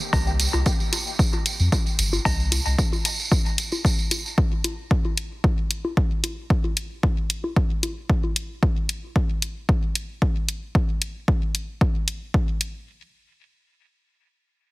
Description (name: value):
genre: dub techno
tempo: 113 BPM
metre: 4/4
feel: swing 53% on 16ths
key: unclear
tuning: A4 = 441 Hz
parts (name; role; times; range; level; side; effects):
- tambourine; percussion; 0.0-4.4 s; none; -28 LUFS; right 3 dB; none
- pure sine sub bass; bass; 0.1-2.8 s; G1 to F2; -22 LUFS; equal; sidechain pumping
- electronic kick drum; drums; 0.1-12.5 s; none; -22 LUFS; equal; studio reverb
- cowbell and bongos; percussion; 0.1-8.3 s; none; -30 LUFS; left 2 dB; sidechain pumping on perc, studio reverb, dub echo
- electronic hi-hat; drums; 0.4-12.7 s; none; -24 LUFS; left 1 dB; studio reverb
room: little or no reverb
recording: heavily compressed radio sound, multiband compression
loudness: -21 LUFS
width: side -21 dB against mid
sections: 0.0-12.9 A section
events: none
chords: none